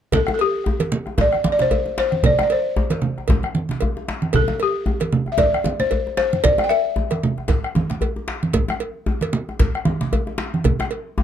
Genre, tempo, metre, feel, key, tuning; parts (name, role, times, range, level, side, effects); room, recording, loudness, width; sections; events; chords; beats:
west african traditional, West African drum ensemble; 114 BPM; 4/4; swing 56% on 16ths; C major pentatonic; A4 = 443 Hz
balafon; melody; 0.1-7.2 s; G4 to G5; -20 LUFS; left 2 dB; plate reverb
bombo; percussion; 0.1-11.2 s; -22 LUFS; equal
congas; percussion; 0.1-10.8 s; -22 LUFS; right 3 dB
cowbell; percussion; 0.1-11.0 s; -27 LUFS; right 6 dB
djembe; percussion; 0.1-11.2 s; -24 LUFS; left 2 dB
light reverb; dark, warm production; -18 LUFS; side -9 dB against mid
0.1-11.2 A section
| 0.13 0.65 1.18 1.71 | 2.23 2.76 3.29 3.81 | 4.34 4.86 5.39 5.92 | 6.44 6.97 7.49 8.02 | 8.54 9.07 9.60 10.12 | 10.65 11.17